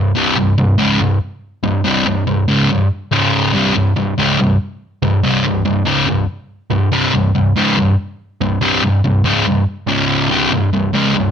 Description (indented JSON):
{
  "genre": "metal",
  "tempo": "142 BPM",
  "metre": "4/4",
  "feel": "straight",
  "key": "unclear",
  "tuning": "A4 = 439 Hz",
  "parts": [
    { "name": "sludgy distorted guitar", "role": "solo", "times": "0.0-11.3 s", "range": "C2 to Db3", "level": "-13 LUFS", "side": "equal", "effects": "overdrive" }
  ],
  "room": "moderate studio reverb, RT60 0.8 s",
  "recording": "none",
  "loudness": "-13 LUFS",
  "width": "side -8 dB against mid",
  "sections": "0.0-10.3 A section; 10.3-11.3 B section",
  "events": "none",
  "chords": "0.0 C5; 3.1 Db5; 3.5 C5; 9.9 Db5; 10.3 C5"
}